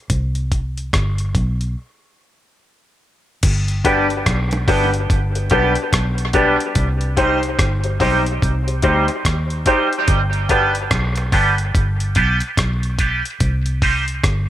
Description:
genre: dub reggae.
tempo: 72 BPM.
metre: 4/4.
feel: swing 61% on 16ths.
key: C harmonic minor.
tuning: A4 = 440 Hz.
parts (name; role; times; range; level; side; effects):
vintage muted fingered electric bass; bass; 0.1-14.5 s; G1 to Eb2; -20 LUFS; equal; none.
dusty soul sampler-style drum kit; drums; 0.1-14.5 s; crash cymbal, hi-hat, kick drum, rim click; -20 LUFS; equal; none.
clean electric guitar; accompaniment; 3.8-14.0 s; G3 to G4; -20 LUFS; right 4 dB; analog chorus, high-pass filter, tape echo.
clear baby grand piano; stabs; 3.8-14.1 s; D4 to C5; -22 LUFS; left 4 dB; high-pass filter, tape echo.
bongos; percussion; 4.5-4.7, 11.2-13.2 s; none; -32 LUFS; right 2 dB; none.
room: light reverb, digital ambience.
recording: echo-heavy mix.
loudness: -15 LUFS.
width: side -12 dB against mid.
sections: 0.0-3.4 A section; 3.4-14.5 B section.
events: break 0.0-3.4; part muted 3.4-10.1; filter sweep 6.8-14.5.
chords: 0.1 C5; 3.4 G; 6.8 Cm; 10.1 G; 13.4 Cm.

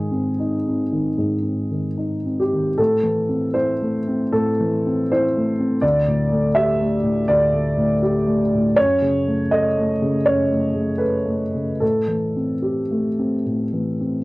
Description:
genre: neoclassical minimalist piano.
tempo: 80 BPM.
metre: 4/4.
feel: uneven beats, rubato.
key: unclear.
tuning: A4 = 439 Hz.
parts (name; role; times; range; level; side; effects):
dark concert grand piano; solo; 0.0-14.2 s; D2 to E5; -18 LUFS; equal; cassette tape.
room: moderate booth ambience, RT60 0.2 s.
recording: home recording on cassette.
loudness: -18 LUFS.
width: side -21 dB against mid.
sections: 0.0-14.2 A section.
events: none.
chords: 0.0 G#; 2.8 Am; 5.8 Dsus4; 8.8 F#m; 11.8 Am7.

